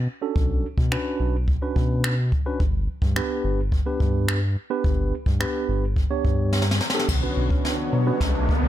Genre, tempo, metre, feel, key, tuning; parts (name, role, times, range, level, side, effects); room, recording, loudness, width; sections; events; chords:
dance-pop; 107 BPM; 4/4; straight; B minor; A4 = 443 Hz
round analog bass; bass; 0.0-8.7 s; G1 to B2; -24 LUFS; equal; sidechain pumping
mellow tine electric piano; accompaniment; 0.2-8.5 s; B3 to C#5; -28 LUFS; right 2 dB; slow stereo tremolo, sidechain pumping
jazz brush drum kit; drums; 0.4-8.6 s; crash cymbal, finger snaps, kick drum, snare drum; -23 LUFS; equal
soft supersaw; sustained chords; 7.1-8.7 s; D3 to C#5; -30 LUFS; left 2 dB; sidechain pumping
glassy wavetable pluck; arpeggios; 7.1-8.7 s; D3 to D4; -33 LUFS; left 1 dB; chorus, sidechain pumping, dub echo
riser; sound effects; 7.6-8.7 s; -30 LUFS; right 1 dB
studio reverb; -21 LUFS; side -12 dB against mid
0.0-7.1 A section; 7.1-8.7 B section
drum fill 6.5-7.1, 7.1-8.7; build-up 7.1-8.7; riser 7.6-8.7
0.0 Bmadd9; 2.6 G; 7.1 Bmadd9